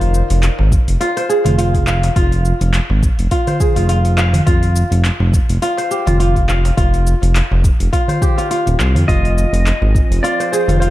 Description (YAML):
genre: organic downtempo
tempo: 104 BPM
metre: 4/4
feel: swing 55% on 16ths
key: F minor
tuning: A4 = 440 Hz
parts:
  - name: kora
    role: arpeggios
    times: 0.0-10.9 s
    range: F4 to F5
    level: -19 LUFS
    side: equal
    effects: tape echo
  - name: smooth gliding synth bass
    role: bass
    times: 0.0-10.9 s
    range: Eb1 to F2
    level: -14 LUFS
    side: equal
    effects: sidechain pumping
  - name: afro-pop drum kit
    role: drums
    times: 0.0-10.9 s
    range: handclaps, hi-hat, shaker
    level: -25 LUFS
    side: equal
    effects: none
  - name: darbuka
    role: percussion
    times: 0.1-10.8 s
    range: none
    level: -25 LUFS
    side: equal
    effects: none
  - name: electronic kick drum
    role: drums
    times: 0.7-10.1 s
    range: none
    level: -16 LUFS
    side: equal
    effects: none
  - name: clean lap steel guitar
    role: melody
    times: 9.1-10.9 s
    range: C5 to Eb5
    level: -20 LUFS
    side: equal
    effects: none
  - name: bowed-like drone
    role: sustained chords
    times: 9.8-10.9 s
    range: F3 to G5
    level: -29 LUFS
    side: right 1 dB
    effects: built-in reverb, sidechain pumping
  - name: quartz singing bowl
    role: texture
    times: 9.1-10.9 s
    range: F4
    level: -29 LUFS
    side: left 2 dB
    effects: none
room: light reverb, digital ambience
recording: dark, warm production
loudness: -12 LUFS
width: side -15 dB against mid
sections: 0.0-10.9 A section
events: none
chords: 0.0 Fm; 4.5 C5/F; 9.1 Fm7